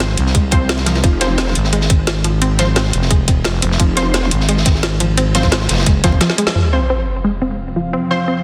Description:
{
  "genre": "dark technical drum and bass",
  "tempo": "174 BPM",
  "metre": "4/4",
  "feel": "straight",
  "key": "F phrygian",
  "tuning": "A4 = 440 Hz",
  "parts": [
    { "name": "unison pluck", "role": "arpeggios", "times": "0.0-8.3 s", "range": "F3 to C4", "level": "-24 LUFS", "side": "equal", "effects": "sidechain pumping, delay" },
    { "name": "growling FM bass", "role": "bass", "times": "0.0-6.2 s", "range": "F1 to C2", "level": "-19 LUFS", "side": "equal", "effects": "none" },
    { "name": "crunchy breakbeat drum kit", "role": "drums", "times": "0.0-6.3 s", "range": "ride cymbal, snare drum", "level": "-27 LUFS", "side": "equal", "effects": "high-pass filter on cymbals, high-pass filter on snare, high-pass filter on room" },
    { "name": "drum and bass drum kit", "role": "drums", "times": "0.0-6.5 s", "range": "hi-hat, snare drum", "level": "-22 LUFS", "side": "equal", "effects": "none" },
    { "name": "electronic kick drum", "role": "drums", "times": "0.3-6.2 s", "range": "none", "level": "-16 LUFS", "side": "equal", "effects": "none" },
    { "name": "orchestra-hit-like synth stab", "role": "stabs", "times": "0.5-8.2 s", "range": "F3 to C5", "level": "-24 LUFS", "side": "equal", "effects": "built-in reverb, delay" },
    { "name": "growl bass", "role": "bass", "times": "1.0-1.5, 3.8-4.3 s", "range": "F1", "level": "-20 LUFS", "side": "equal", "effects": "chorus, overdrive" },
    { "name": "sweeping resonant pad", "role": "sustained chords", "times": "7.0-8.4 s", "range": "F3 to F5", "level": "-25 LUFS", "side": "equal", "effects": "chorus, sidechain pumping" },
    { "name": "sub drop", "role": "sound effects", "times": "6.6-7.9 s", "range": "none", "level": "-21 LUFS", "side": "equal", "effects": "none" }
  ],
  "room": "moderate lush hall reverb, RT60 1.6 s, digital ambience",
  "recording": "dense, heavily limited modern master",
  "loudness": "-15 LUFS",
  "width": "mono",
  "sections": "0.0-6.6 A section; 6.6-8.4 B section",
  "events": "drum fill 6.2-6.6; band accent 6.5; impact 6.6-7.9; filter sweep on analog synth pad 6.6-8.4",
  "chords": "0.0 F5"
}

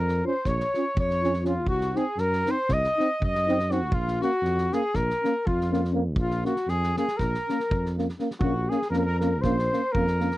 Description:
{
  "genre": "balkan folk, Balkan brass band",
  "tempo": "240 BPM (eighths)",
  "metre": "9/8",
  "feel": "straight",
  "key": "Bb minor",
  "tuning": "A4 = 440 Hz",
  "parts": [
    { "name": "warm cornet", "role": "melody", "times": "0.0-10.4 s", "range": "F4 to Eb5", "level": "-27 LUFS", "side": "equal", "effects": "none" },
    { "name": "clear alto saxophone", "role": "second line", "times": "0.0-10.4 s", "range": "F4 to Eb5", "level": "-34 LUFS", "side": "left 6 dB", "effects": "none" },
    { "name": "mellow tuba", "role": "bass", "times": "0.0-10.3 s", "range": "Bb1 to Gb2", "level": "-28 LUFS", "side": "equal", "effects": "none" },
    { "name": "loose indie drum kit", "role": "percussion", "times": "0.1-10.4 s", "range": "kick drum, snare drum", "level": "-31 LUFS", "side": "equal", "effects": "none" },
    { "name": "dark euphonium", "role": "accompaniment", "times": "0.2-10.3 s", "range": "Db4 to F4", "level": "-30 LUFS", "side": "left 5 dB", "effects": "none" },
    { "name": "warm euphonium", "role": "accompaniment", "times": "0.3-10.3 s", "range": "Bb3 to Db4", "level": "-30 LUFS", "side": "right 5 dB", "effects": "none" }
  ],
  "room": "little or no reverb",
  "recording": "dry, close 1970s-style studio recording",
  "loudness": "-23 LUFS",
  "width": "side -16 dB against mid",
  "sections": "0.0-8.4 A section; 8.4-10.4 B section",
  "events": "none",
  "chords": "0.0 Bbm; 1.7 Cdim; 3.9 Bbm"
}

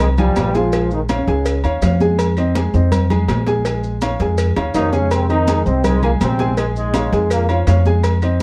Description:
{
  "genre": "latin, salsa",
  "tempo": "164 BPM",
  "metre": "4/4",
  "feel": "straight",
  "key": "unclear",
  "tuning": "A4 = 440 Hz",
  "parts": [
    { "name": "mellow trombone section", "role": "melody", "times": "0.0-1.6, 4.7-7.8 s", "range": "G2 to F4", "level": "-23 LUFS", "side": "equal", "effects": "none" },
    { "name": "dark upright piano", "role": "accompaniment", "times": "0.0-8.4 s", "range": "F3 to Ab5", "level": "-23 LUFS", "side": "equal", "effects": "none" },
    { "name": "upright bass", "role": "bass", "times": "0.0-8.4 s", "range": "Bb1 to F2", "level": "-20 LUFS", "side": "equal", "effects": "none" },
    { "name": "agogo bells and timbales", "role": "percussion", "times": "0.0-8.4 s", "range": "none", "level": "-30 LUFS", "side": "equal", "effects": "none" },
    { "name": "congas", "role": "percussion", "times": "0.0-8.4 s", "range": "none", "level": "-26 LUFS", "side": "equal", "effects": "none" },
    { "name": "cowbell and bongos", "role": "percussion", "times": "0.0-8.2 s", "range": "none", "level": "-29 LUFS", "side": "equal", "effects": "none" },
    { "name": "maracas", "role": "percussion", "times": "0.2-8.4 s", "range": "none", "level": "-40 LUFS", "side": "equal", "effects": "none" }
  ],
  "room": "light reverb",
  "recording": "dark, warm production",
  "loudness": "-17 LUFS",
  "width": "mono",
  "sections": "0.0-8.4 A section",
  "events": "drum fill 4.6-5.1",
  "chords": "0.0 Fm7; 0.7 Bbm7; 2.2 Fm7; 3.7 Bbm7; 5.1 Fm7; 6.6 Bbm7"
}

